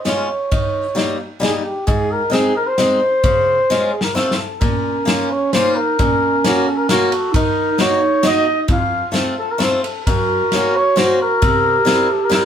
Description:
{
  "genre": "alpine folk, alpine dance band",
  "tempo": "132 BPM",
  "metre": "3/4",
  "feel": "rubato",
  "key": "Db major, Bb harmonic minor from 4.6 s",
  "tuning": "A4 = 441 Hz",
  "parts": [
    { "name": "mellow flugelhorn", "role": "melody", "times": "0.0-12.4 s", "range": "G4 to F5", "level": "-17 LUFS", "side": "equal", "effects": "none" },
    { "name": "picked swing-style acoustic guitar", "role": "accompaniment", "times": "0.1-12.4 s", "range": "F2 to Gb4", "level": "-21 LUFS", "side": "left 2 dB", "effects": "none" },
    { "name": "loose indie drum kit", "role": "drums", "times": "0.1-12.4 s", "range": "kick drum, ride cymbal, snare drum", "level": "-20 LUFS", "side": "equal", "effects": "none" },
    { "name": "dark clarinet", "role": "second line", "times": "4.6-12.4 s", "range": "Db4 to G4", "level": "-21 LUFS", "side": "right 4 dB", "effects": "none" }
  ],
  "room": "wet studio reverb, RT60 0.6 s",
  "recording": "band playing live in one room",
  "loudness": "-14 LUFS",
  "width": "side -8 dB against mid",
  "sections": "0.0-4.6 A section; 4.6-12.4 B section",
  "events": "drum fill 3.7-4.6",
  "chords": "0.0 Db; 0.5 Eb7; 1.9 Ab; 3.2 Db; 4.2 F; 4.6 Bbm; 6.0 Gb/Bb; 7.4 Ebm; 8.7 F; 10.1 Gb; 11.4 C7"
}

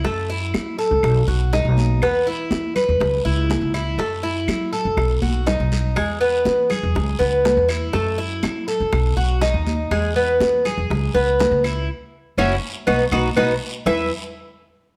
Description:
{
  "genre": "latin, Cuban son and guajira",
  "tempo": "122 BPM",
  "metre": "4/4",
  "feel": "straight",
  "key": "E major",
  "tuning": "A4 = 440 Hz",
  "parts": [
    { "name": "Cuban tres", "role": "arpeggios", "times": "0.0-14.1 s", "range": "G#3 to E5", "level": "-22 LUFS", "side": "equal", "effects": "none" },
    { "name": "upright bass", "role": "bass", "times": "0.0-14.1 s", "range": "F#1 to F#3", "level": "-25 LUFS", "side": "equal", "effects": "none" },
    { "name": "bongos", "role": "percussion", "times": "0.0-14.0 s", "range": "none", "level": "-32 LUFS", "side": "equal", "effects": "none" },
    { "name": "guiro", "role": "percussion", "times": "0.0-14.0 s", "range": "none", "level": "-39 LUFS", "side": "equal", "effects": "none" },
    { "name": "congas", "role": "percussion", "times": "0.1-14.0 s", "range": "none", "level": "-31 LUFS", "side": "equal", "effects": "none" },
    { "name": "claves", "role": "percussion", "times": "0.5-14.0 s", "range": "none", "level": "-36 LUFS", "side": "equal", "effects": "none" }
  ],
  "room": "moderate large studio reverb, RT60 1.4 s",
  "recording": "none",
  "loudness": "-20 LUFS",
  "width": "mono",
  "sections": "0.0-6.0 A section; 6.0-13.9 B section; 13.9-15.0 C section",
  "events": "drum fill 5.2-6.0, 12.9-13.9; band accent 11.9-13.9",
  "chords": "0.0 F#m7; 1.0 B7; 2.0 E5; 3.0 C#m7; 4.0 F#m7; 5.0 B7; 6.0 E; 7.0 C#m7; 7.9 F#m7; 8.9 B7; 9.9 E; 10.9 C#m7; 11.9 F#5; 12.9 B; 13.9 E5"
}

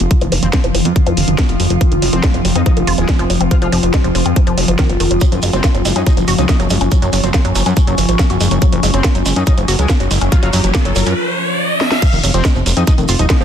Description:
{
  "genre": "psychedelic trance",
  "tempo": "141 BPM",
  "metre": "4/4",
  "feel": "straight",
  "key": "unclear",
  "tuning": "A4 = 440 Hz",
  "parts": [
    { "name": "evolving wavetable pad", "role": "sustained chords", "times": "0.0-13.4 s", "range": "F3 to F4", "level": "-21 LUFS", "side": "left 2 dB", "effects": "chorus, built-in reverb, phaser, sidechain pumping" },
    { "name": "woody wave-folded pluck", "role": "riff", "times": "0.0-13.4 s", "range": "Eb3 to Gb4", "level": "-20 LUFS", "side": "moving between left 4 dB and right 6 dB", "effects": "chorus, auto-pan, sidechain pumping, tape echo" },
    { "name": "fat analog bass", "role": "bass", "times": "0.0-13.4 s", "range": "Eb1 to Gb2", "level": "-16 LUFS", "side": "equal", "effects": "none" },
    { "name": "drum and bass drum kit", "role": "drums", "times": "0.0-13.4 s", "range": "crash cymbal, hi-hat, snare drum", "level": "-21 LUFS", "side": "equal", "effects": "none" },
    { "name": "granular cloud pad", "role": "texture", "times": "0.0-13.4 s", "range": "C4 to Db6", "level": "-27 LUFS", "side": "right 1 dB", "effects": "built-in reverb, sidechain pumping" },
    { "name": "electronic kick drum", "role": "drums", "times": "0.1-13.4 s", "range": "none", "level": "-13 LUFS", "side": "equal", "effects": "none" },
    { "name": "metallic wobble bass", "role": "second line", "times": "0.4-13.4 s", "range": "Ab3 to F4", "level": "-26 LUFS", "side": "left 4 dB", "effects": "chorus, sidechain pumping, high-pass filter, tape echo" },
    { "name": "shekere", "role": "percussion", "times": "5.2-13.4 s", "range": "none", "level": "-26 LUFS", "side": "right 5 dB", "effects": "none" },
    { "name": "riser", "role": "sound effects", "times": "9.6-12.0 s", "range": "none", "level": "-20 LUFS", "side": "equal", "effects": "none" }
  ],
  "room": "digital ambience",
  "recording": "dense, heavily limited modern master",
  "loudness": "-11 LUFS",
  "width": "side -9 dB against mid",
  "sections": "0.0-12.0 A section; 12.0-13.4 B section",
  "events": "fade-in on ambient pad 0.0-12.0; filter sweep on synth arpeggio sound 0.0-12.0; riser 9.6-12.0; break 11.2-12.0; drum fill 11.8; drop 12.0-13.4",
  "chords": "0.0 F5; 5.2 Gb5; 12.0 F5"
}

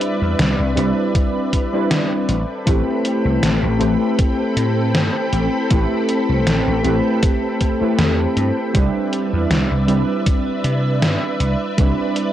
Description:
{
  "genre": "vaporwave",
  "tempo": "79 BPM",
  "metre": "4/4",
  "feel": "swing 55% on 16ths",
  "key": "A minor",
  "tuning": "A4 = 445 Hz",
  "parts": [
    { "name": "warbly lo-fi synth keys", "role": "accompaniment", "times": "0.0-12.3 s", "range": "G3 to B4", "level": "-20 LUFS", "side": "equal", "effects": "lush chorus, tape echo" },
    { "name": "soft string machine", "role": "sustained chords", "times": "0.0-12.3 s", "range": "C4 to B5", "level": "-23 LUFS", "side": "equal", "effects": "ensemble chorus, vintage 12-bit sampler grit" },
    { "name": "gated 80s digital drum machine", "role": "drums", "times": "0.0-12.3 s", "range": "hi-hat, snare drum", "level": "-21 LUFS", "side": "equal", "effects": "gated reverb, gated reverb snare" },
    { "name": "vintage slap bass", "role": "bass", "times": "0.2-11.9 s", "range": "A1 to C3", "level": "-19 LUFS", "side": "equal", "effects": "none" },
    { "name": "electronic kick drum", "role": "drums", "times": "1.1-11.9 s", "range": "none", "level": "-17 LUFS", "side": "equal", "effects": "overdrive" }
  ],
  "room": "digital ambience",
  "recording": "dry, gritty hardware recording, transformer saturation",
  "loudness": "-16 LUFS",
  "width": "side -12 dB against mid",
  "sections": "0.0-12.3 A section",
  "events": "none",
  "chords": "0.0 Cmaj9; 2.3 Am9; 8.7 Cmaj9"
}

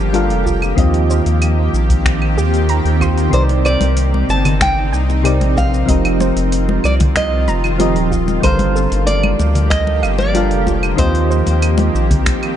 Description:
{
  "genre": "sunset chillout",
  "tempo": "94 BPM",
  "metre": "4/4",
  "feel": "straight",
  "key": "unclear",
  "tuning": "A4 = 440 Hz",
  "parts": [
    { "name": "soft electric-piano-like synth keys", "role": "accompaniment", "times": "0.0-12.6 s", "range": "C3 to F5", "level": "-20 LUFS", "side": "moving between left 3 dB and right 3 dB", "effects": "chorus, auto-pan, ping-pong delay" },
    { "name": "shimmering ambient pad", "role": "sustained chords", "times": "0.0-12.6 s", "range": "Eb3 to G4", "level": "-22 LUFS", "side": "left 1 dB", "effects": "chorus, built-in reverb" },
    { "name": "round analog bass", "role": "bass", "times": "0.0-12.4 s", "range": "Eb1 to Eb2", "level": "-16 LUFS", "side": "equal", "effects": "none" },
    { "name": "soft round pluck", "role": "arpeggios", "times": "0.1-11.5 s", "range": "F4 to C6", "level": "-26 LUFS", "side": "right 3 dB", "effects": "chorus, ping-pong delay" },
    { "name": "deep house drum kit", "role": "drums", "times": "0.1-12.6 s", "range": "claves, finger snaps, hi-hat, shaker", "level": "-23 LUFS", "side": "right 1 dB", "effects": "none" },
    { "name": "electronic kick drum", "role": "drums", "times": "0.5-12.4 s", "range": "none", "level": "-18 LUFS", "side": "equal", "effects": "none" },
    { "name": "nylon-string guitar", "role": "melody", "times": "3.3-12.2 s", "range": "C5 to A5", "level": "-21 LUFS", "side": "right 1 dB", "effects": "ping-pong delay" },
    { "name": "congas", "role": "percussion", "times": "3.5-12.4 s", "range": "none", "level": "-22 LUFS", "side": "left 3 dB", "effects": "none" }
  ],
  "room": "light reverb",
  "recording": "dark, warm production, nothing above 10.6 kHz",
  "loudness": "-12 LUFS",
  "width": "side -10 dB against mid",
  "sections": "0.0-12.6 A section",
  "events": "none",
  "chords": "0.0 Gm9; 0.8 Eb6; 3.3 Cm9; 5.9 F7sus4; 8.4 Gm9; 11.0 Eb6"
}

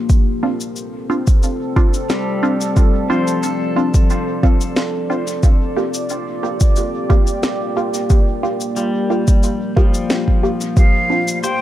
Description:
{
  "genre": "ambient dub",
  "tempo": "90 BPM",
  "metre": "4/4",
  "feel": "straight",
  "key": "G minor",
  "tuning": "A4 = 440 Hz",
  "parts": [
    { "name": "deep dark ambient pad", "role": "sustained chords", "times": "0.0-11.6 s", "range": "A3 to D5", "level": "-22 LUFS", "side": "equal", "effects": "chorus, built-in reverb" },
    { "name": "electronic cabasa and snare drum", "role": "drums", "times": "0.1-11.6 s", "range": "none", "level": "-24 LUFS", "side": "left 1 dB", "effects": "dub echo" },
    { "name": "electronic kick drum", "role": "drums", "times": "0.1-10.9 s", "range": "none", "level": "-13 LUFS", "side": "equal", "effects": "overdrive" },
    { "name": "filtered dub chord stab", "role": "stabs", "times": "0.4-11.2 s", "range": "Bb3 to G4", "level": "-22 LUFS", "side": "right 2 dB", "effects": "phaser, dub echo" },
    { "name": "pedal steel guitar", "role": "arpeggios", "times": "2.1-11.6 s", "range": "F3 to C5", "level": "-24 LUFS", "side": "left 3 dB", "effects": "dub echo" },
    { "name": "bright silver concert flute", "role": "melody", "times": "10.8-11.6 s", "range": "F5 to G5", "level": "-19 LUFS", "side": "right 2 dB", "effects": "none" }
  ],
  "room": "light reverb",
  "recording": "none",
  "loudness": "-14 LUFS",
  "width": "side -13 dB against mid",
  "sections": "0.0-10.8 A section",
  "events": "none",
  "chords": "0.1 Dm7; 5.4 Gm7; 10.8 Dm7"
}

